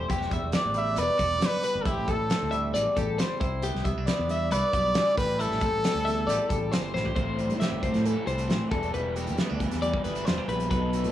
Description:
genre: math rock and midwest emo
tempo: 136 BPM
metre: 4/4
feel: straight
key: E minor from 7.2 s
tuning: A4 = 440 Hz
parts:
  - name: twangy electric guitar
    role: accompaniment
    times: 0.0-11.1 s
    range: E2 to G4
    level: -35 LUFS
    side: right 5 dB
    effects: lush chorus, plate reverb
  - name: twelve-string electric guitar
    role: arpeggios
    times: 0.0-11.1 s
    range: E4 to E5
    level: -30 LUFS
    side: left 3 dB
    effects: tape echo, plate reverb
  - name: fingered electric bass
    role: bass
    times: 0.0-11.1 s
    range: E1 to B2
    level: -31 LUFS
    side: equal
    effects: none
  - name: loose indie drum kit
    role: drums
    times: 0.1-11.1 s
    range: hi-hat, kick drum, snare drum, toms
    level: -31 LUFS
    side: equal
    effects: none
  - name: brilliant trumpet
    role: melody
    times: 0.8-7.0 s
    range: G4 to E5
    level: -27 LUFS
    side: equal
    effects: tape echo, plate reverb
  - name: crunchy overdriven guitar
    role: riff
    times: 7.1-11.1 s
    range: A2 to A4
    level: -33 LUFS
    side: left 2 dB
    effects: none
room: moderate studio reverb, RT60 0.5 s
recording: none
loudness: -24 LUFS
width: side -12 dB against mid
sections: 0.0-7.2 A section; 7.2-11.1 B section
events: drum fill 6.9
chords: 0.1 Em9; 1.9 Am7; 3.4 Cmaj9; 5.2 Am7; 8.7 Em9

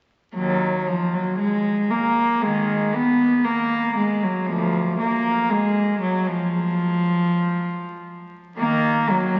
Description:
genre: classical, baroque-style suite movement for unaccompanied cello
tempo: 59 BPM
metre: 4/4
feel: rubato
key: unclear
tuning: A4 = 440 Hz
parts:
  - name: rich cello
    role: solo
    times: 0.3-9.4 s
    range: D2 to Cb4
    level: -22 LUFS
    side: equal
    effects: none
room: wet cathedral reverb, RT60 4.3 s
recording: very old 78 rpm record, vinyl crackle, nothing above 7.8 kHz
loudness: -21 LUFS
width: mono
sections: 0.4-9.4 A section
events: none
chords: none

